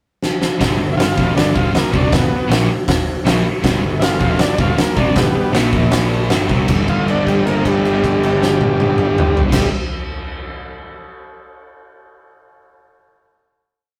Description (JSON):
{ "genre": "garage rock duo or trio", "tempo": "157 BPM", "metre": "4/4", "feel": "straight", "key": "unclear", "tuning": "A4 = 443 Hz", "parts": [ { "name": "oversized low-tuned drum kit", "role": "drums", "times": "0.2-9.6 s", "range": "crash cymbal, hi-hat, kick drum, snare drum, toms", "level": "-20 LUFS", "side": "equal", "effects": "none" }, { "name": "fuzz guitar", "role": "riff", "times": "0.6-9.7 s", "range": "F2 to C4", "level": "-22 LUFS", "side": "equal", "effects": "distortion" }, { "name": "fuzz picked electric bass", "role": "bass", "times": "0.6-9.7 s", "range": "F1 to C2", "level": "-24 LUFS", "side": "equal", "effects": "overdrive" }, { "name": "overdriven combo organ", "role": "melody", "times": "0.9-9.7 s", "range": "G3 to F4", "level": "-21 LUFS", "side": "equal", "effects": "none" } ], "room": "moderate small room reverb, RT60 0.5 s", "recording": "rough rehearsal-room recording", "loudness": "-16 LUFS", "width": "mono", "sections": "0.0-0.6 pickup bar; 0.6-6.7 pre-chorus; 6.7-9.7 final chord", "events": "drum fill 0.2-0.6; held note 6.7-9.5", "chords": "0.0 N.C.; 0.6 G; 5.7 Bb5; 6.3 G5" }